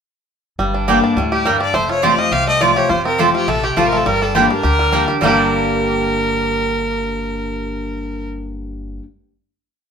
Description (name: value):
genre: bluegrass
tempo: 208 BPM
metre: 4/4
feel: swing 54% on 8ths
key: G minor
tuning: A4 = 436 Hz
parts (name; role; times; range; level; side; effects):
- picked steel-string acoustic guitar; accompaniment; 0.6-9.0 s; F2 to G4; -20 LUFS; left 3 dB; none
- bluegrass banjo; arpeggios; 0.6-9.0 s; D3 to G4; -20 LUFS; right 2 dB; none
- upright bass; bass; 0.6-9.0 s; F1 to D2; -26 LUFS; equal; none
- mandolin; stabs; 0.9-9.0 s; Bb3 to A5; -19 LUFS; right 6 dB; none
- clear fiddle; melody; 1.3-8.3 s; F4 to F5; -19 LUFS; equal; none
room: moderate studio reverb, RT60 0.8 s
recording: minimal, uncompressed stereo recording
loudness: -14 LUFS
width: side -7 dB against mid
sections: 0.6-5.2 A section; 5.2-7.5 final chord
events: none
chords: 0.6 Gm; 1.7 F; 4.1 Gm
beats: | 0.59 0.88 1.17 1.46 | 1.75 2.03 2.32 2.61 | 2.90 3.19 3.48 3.77 | 4.06 4.35 4.64 4.93 | 5.22 5.51 5.79 6.08 | 6.37 6.66 6.95 7.24